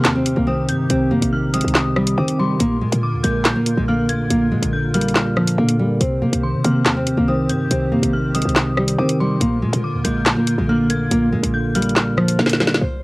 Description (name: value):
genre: hip hop, drill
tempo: 141 BPM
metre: 4/4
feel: half-time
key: unclear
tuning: A4 = 440 Hz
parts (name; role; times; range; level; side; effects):
- nylon-string guitar; melody; 0.0-13.0 s; F3 to C5; -21 LUFS; equal; cassette tape
- dark detuned synth bell; second line; 0.0-12.4 s; C6 to Ab6; -29 LUFS; left 2 dB; chorus, cassette tape, plate reverb, analog delay
- mellow tine electric piano; accompaniment; 0.0-12.8 s; Bb2 to C4; -20 LUFS; equal; cassette tape
- hollow soft pad; sustained chords; 0.0-12.8 s; C3 to C5; -31 LUFS; equal; ensemble chorus, cassette tape
- short 808-style bass; bass; 0.0-13.0 s; Bb1 to C3; -25 LUFS; equal; none
- drill drum kit; drums; 0.0-12.8 s; handclaps, hi-hat, rim click, snare drum; -19 LUFS; equal; cassette tape
room: light reverb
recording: home recording on cassette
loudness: -16 LUFS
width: side -22 dB against mid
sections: 0.0-12.8 A section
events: drum fill 12.4-12.8; break 12.8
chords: 0.0 Cm; 2.6 Bb; 6.0 Cm; 9.4 Bb